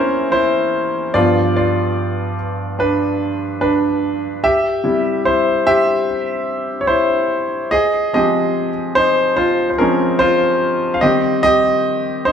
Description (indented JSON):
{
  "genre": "pop",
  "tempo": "73 BPM",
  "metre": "4/4",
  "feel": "straight",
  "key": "F minor",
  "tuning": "A4 = 440 Hz",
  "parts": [
    { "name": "clear grand piano", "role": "solo", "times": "0.0-12.3 s", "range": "G2 to F5", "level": "-14 LUFS", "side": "equal", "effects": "none" }
  ],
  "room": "wet large studio reverb, RT60 1.2 s",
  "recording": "band playing live in one room",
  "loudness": "-14 LUFS",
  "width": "side -7 dB against mid",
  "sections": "0.0-12.3 A section",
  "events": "grand piano solo 0.0-12.3",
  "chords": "0.0 C7/E; 1.1 G7; 4.4 C; 7.7 Fm; 11.0 Eb6"
}